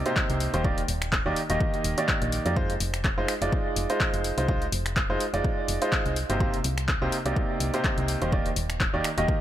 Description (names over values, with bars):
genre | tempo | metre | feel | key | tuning
piano house | 125 BPM | 4/4 | swing 55% on 16ths | F dorian | A4 = 440 Hz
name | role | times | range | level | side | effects
clear baby grand piano | riff | 0.0-9.4 s | C3 to Eb5 | -28 LUFS | right 2 dB | sidechain pumping, analog delay
solid FM bass | bass | 0.0-9.3 s | Eb1 to F2 | -30 LUFS | equal | sidechain pumping
punchy analog drum machine | drums | 0.1-9.3 s | finger snaps, handclaps, hi-hat | -30 LUFS | left 1 dB | none
electronic kick drum | drums | 0.2-9.4 s | none | -28 LUFS | equal | none
room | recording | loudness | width
light reverb | echo-heavy mix | -24 LUFS | side -12 dB against mid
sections
0.0-9.4 A section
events
none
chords
0.0 Cm7; 0.6 Ebmaj7; 2.6 Fm7; 6.2 Cm7; 8.3 Ebmaj7